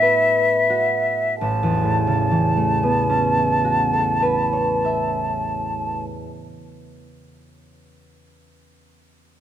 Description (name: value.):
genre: classical, impressionist duo for flute and harp.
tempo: 43 BPM.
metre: 3/4.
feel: rubato.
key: A major.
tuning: A4 = 437 Hz.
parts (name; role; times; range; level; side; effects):
silver concert flute; melody; 0.0-6.0 s; E5 to A5; -20 LUFS; equal; none.
concert harp; accompaniment; 0.0-7.0 s; A1 to E5; -21 LUFS; equal; none.
room: moderate scoring stage reverb, RT60 1.9 s.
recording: close, detailed microphones.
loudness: -17 LUFS.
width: side -10 dB against mid.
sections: 0.0-1.4 A section; 1.4-5.6 B section.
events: slowing down 0.0-1.4.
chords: 0.0 Esus4/A; 1.4 A69.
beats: 0.01 | 1.41 2.82 4.21.